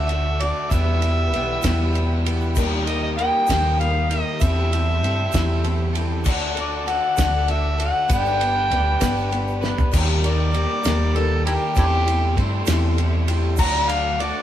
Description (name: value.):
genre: folk rock and heartland rock.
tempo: 65 BPM (dotted quarters).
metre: 6/8.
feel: straight.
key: unclear.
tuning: A4 = 440 Hz.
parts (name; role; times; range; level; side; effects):
overdriven harmonica; melody; 0.0-14.4 s; D4 to Bb5; -23 LUFS; equal; none.
picked steel-string acoustic guitar; accompaniment; 0.0-14.4 s; G2 to B4; -29 LUFS; left 5 dB; none.
muted studio string section; sustained chords; 0.0-14.4 s; A3 to E6; -36 LUFS; left 2 dB; none.
electric guitar at the edge of break-up; riff; 0.0-14.4 s; E2 to D5; -27 LUFS; right 2 dB; none.
hollow-body short-scale fingered electric bass; bass; 0.0-14.3 s; G1 to G2; -22 LUFS; equal; none.
cloth-damped thuddy drum kit; drums; 0.1-14.3 s; crash cymbal, kick drum, ride cymbal, snare drum, toms; -25 LUFS; equal; none.
egg shaker; percussion; 0.7-13.7 s; none; -36 LUFS; right 8 dB; none.
room: light reverb.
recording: band playing live in one room, lossy compression artefacts.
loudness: -18 LUFS.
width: side -11 dB against mid.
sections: 0.0-9.9 A section; 9.9-14.4 B section.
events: drum fill 9.6-9.9; harmonica solo 9.9-14.4.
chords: 0.0 D; 0.7 Em; 2.6 Eb; 4.4 C6/E; 6.3 D; 8.1 G; 9.9 Eb; 11.8 C6/E; 13.6 D.